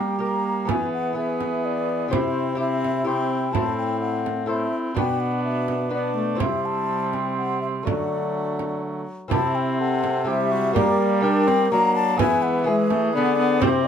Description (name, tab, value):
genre	classical, renaissance-style consort dance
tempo	126 BPM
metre	3/4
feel	straight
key	unclear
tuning	A4 = 443 Hz
part	mellow baroque flute	melody	0.0-13.9 s	C5 to Bb5	-26 LUFS	left 6 dB	none
part	dark cor anglais	second line	0.0-13.9 s	A3 to A4	-29 LUFS	right 6 dB	none
part	lute	accompaniment	0.0-13.9 s	A2 to G5	-29 LUFS	left 3 dB	none
part	warm viola	accompaniment	0.0-13.9 s	F#3 to D4	-27 LUFS	left 2 dB	none
part	clear trombone	bass	0.0-13.9 s	A2 to G3	-26 LUFS	right 2 dB	none
part	frame drum	percussion	0.7-13.8 s	none	-26 LUFS	right 6 dB	none
room	light reverb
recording	minimal, uncompressed stereo recording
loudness	-20 LUFS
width	side -8 dB against mid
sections	0.0-9.3 A section; 9.3-13.9 A section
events	none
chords	0.0 Gm; 0.7 E; 2.1 C; 3.5 Am; 5.0 Bm; 6.4 C; 7.9 D; 9.3 C; 10.8 Gm; 12.2 E